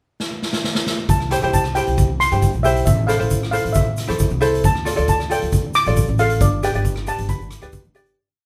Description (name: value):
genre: calypso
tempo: 135 BPM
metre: 4/4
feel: straight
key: C major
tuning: A4 = 440 Hz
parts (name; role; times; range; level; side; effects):
- street-band drum kit; drums; 0.2-8.2 s; hi-hat, kick drum, rim click, snare drum; -23 LUFS; equal; none
- steel pan; melody; 1.1-7.9 s; D5 to D6; -24 LUFS; equal; none
- upright bass; bass; 1.1-8.1 s; G1 to G2; -24 LUFS; equal; none
- tube shaker; percussion; 1.1-8.1 s; none; -38 LUFS; equal; none
- ukulele; accompaniment; 1.3-8.2 s; E4 to D5; -24 LUFS; equal; none
room: moderate studio reverb, RT60 0.5 s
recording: band playing live in one room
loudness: -19 LUFS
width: mono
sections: 0.0-1.1 pickup bar; 1.1-8.2 verse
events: drum fill 0.2-1.1; fade-out 6.4-8.2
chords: 0.0 N.C.; 1.1 C; 2.9 Am; 4.6 Dm; 6.4 G